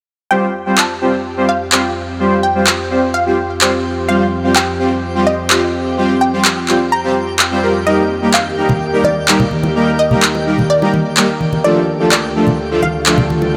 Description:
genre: progressive house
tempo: 127 BPM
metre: 4/4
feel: straight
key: F mixolydian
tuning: A4 = 440 Hz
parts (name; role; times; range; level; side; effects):
- unison pluck; melody; 0.3-13.6 s; D5 to Bb5; -22 LUFS; equal; subtle chorus, tape echo
- evolving wavetable pad; sustained chords; 1.2-13.6 s; D2 to C5; -23 LUFS; equal; chorus, built-in reverb
- soft supersaw; stabs; 0.3-13.6 s; F3 to C5; -18 LUFS; equal; tape echo
- twinkling granular texture; texture; 1.0-13.6 s; G4 to G5; -30 LUFS; equal; built-in reverb
- electronic handclaps; drums; 0.8-13.2 s; none; -18 LUFS; equal; overdrive
- congas and bongos; percussion; 8.7-13.5 s; none; -20 LUFS; equal; none
room: moderate huge ambient reverb, RT60 4.6 s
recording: none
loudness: -14 LUFS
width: mono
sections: 0.3-13.6 A section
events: none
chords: 0.3 Fsus2; 7.9 Eb; 11.6 Dm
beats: | 0.31 0.78 1.25 1.72 | 2.20 2.67 3.14 3.61 | 4.09 4.56 5.03 5.50 | 5.97 6.45 6.92 7.39 | 7.87 8.34 8.81 9.28 | 9.76 10.23 10.70 11.17 | 11.64 12.12 12.59 13.06 | 13.53

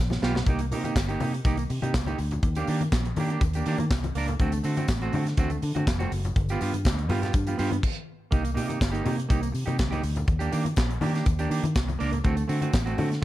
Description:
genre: disco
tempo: 122 BPM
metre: 4/4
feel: straight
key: C minor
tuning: A4 = 440 Hz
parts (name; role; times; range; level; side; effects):
- vintage muted fingered electric bass; bass; 0.0-13.2 s; F1 to Eb3; -27 LUFS; equal; none
- clean electric guitar; accompaniment; 0.1-13.2 s; A3 to Bb4; -30 LUFS; right 4 dB; plate reverb
- modern studio drum kit; drums; 0.1-13.2 s; crash cymbal, handclaps, hi-hat, kick drum, snare drum; -27 LUFS; equal; none
- congas; percussion; 0.1-13.1 s; none; -35 LUFS; left 4 dB; none
- tambourine; percussion; 0.1-12.9 s; none; -47 LUFS; left 16 dB; none
room: light reverb, small room ambience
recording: dark, warm production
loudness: -24 LUFS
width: side -15 dB against mid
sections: 0.0-8.3 A section; 8.3-13.2 A section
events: drum fill 0.0-0.5; stop 7.8-8.3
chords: 0.5 Cm7; 2.4 Ebmaj7; 4.4 D7; 6.4 G7; 8.3 Cm7; 10.3 Ebmaj7; 12.2 D7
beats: | 0.46 0.96 1.45 1.94 | 2.43 2.92 3.41 3.90 | 4.40 4.89 5.38 5.87 | 6.36 6.85 7.34 7.83 | 8.32 8.81 9.30 9.79 | 10.29 10.78 11.27 11.76 | 12.25 12.74 13.23

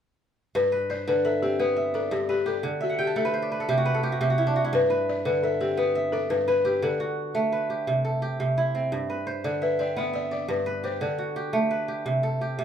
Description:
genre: west african traditional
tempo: 115 BPM (dotted quarters)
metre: 12/8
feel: straight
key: G major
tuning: A4 = 441 Hz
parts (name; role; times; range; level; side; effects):
- balafon; melody; 0.6-12.4 s; F#4 to E5; -25 LUFS; left 3 dB; none
- kora; arpeggios; 0.6-12.6 s; G2 to A5; -26 LUFS; right 2 dB; none
room: moderate large studio reverb, RT60 0.9 s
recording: band playing live in one room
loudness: -23 LUFS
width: side -8 dB against mid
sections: 0.6-12.6 A section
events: kora fill 2.8-4.7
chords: 0.6 G; 2.6 D5; 3.7 N.C.; 4.7 G; 6.8 D; 7.9 C; 8.9 G; 11.0 D; 12.1 C5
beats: | 0.55 1.07 1.60 2.12 | 2.64 3.17 3.69 4.21 | 4.73 5.25 5.78 6.30 | 6.82 7.35 7.87 8.39 | 8.92 9.44 9.96 10.49 | 11.01 11.54 12.06 12.59

